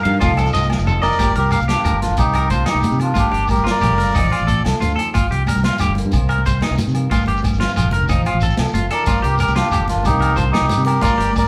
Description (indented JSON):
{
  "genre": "highlife guitar band",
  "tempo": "122 BPM (dotted quarters)",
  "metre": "12/8",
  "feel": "straight",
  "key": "G minor",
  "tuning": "A4 = 441 Hz",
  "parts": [
    { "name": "flamenco guitar", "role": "accompaniment", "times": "0.0-11.5 s", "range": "G2 to A4", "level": "-29 LUFS", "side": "equal", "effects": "none" },
    { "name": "combo organ", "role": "sustained chords", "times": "0.0-1.2 s", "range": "Eb5 to Bb5", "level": "-35 LUFS", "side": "equal", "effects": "none" },
    { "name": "electric guitar at the edge of break-up", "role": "arpeggios", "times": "0.0-11.3 s", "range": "Eb4 to F5", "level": "-25 LUFS", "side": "equal", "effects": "none" },
    { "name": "fingered electric bass", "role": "bass", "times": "0.1-11.5 s", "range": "F1 to C3", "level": "-22 LUFS", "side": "equal", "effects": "none" },
    { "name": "vintage drum kit", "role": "drums", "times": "0.1-11.4 s", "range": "hi-hat, kick drum, ride cymbal, snare drum, toms", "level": "-26 LUFS", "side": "equal", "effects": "none" },
    { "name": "congas", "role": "percussion", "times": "0.1-11.5 s", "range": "none", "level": "-29 LUFS", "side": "equal", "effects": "none" },
    { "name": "agogo bells", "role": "percussion", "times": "0.2-11.5 s", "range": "none", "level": "-34 LUFS", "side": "equal", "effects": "none" },
    { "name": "shekere", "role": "percussion", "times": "0.2-11.5 s", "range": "none", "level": "-28 LUFS", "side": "equal", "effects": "none" },
    { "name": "melodica", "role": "melody", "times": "1.0-4.6, 8.9-11.5 s", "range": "D4 to D5", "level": "-22 LUFS", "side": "equal", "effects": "none" }
  ],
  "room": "moderate studio reverb, RT60 0.7 s",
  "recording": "band playing live in one room",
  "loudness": "-17 LUFS",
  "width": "mono",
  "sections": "0.0-1.2 A section; 1.2-11.5 B section",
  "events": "drum fill 0.7-1.2",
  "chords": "0.2 F7; 1.2 Gm7; 2.2 Cm7; 3.2 Gm7; 4.2 F7; 5.1 Gm7; 6.1 Cm7; 7.1 Gm7; 8.1 F7; 9.1 Gm7; 10.1 Cm7"
}